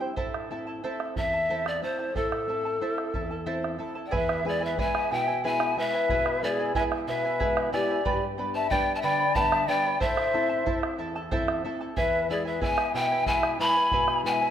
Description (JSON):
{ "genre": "andean folk, Andean ensemble", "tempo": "61 BPM (dotted quarters)", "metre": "6/8", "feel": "straight", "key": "unclear", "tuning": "A4 = 440 Hz", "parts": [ { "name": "charango", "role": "accompaniment", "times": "0.0-14.5 s", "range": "E4 to B5", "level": "-31 LUFS", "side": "right 3 dB", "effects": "none" }, { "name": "nylon-string guitar", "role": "accompaniment", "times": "0.0-14.5 s", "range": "E2 to E4", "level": "-35 LUFS", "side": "left 3 dB", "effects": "none" }, { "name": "bombo", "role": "percussion", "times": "0.0-14.2 s", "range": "none", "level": "-33 LUFS", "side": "right 2 dB", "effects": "none" }, { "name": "breathy mellow pan flute", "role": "melody", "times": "1.2-14.5 s", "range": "A4 to B5", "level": "-26 LUFS", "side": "equal", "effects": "none" }, { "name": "breathy large quena", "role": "second line", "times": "4.1-14.5 s", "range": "G4 to A5", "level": "-30 LUFS", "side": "left 5 dB", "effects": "none" } ], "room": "moderate concert hall reverb, RT60 1.9 s", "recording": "minimal, uncompressed stereo recording", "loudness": "-24 LUFS", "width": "side -9 dB against mid", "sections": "0.0-4.1 A section; 4.1-14.5 B section", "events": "none", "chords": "0.2 Am; 4.1 E; 8.1 G; 10.0 Am; 12.0 E" }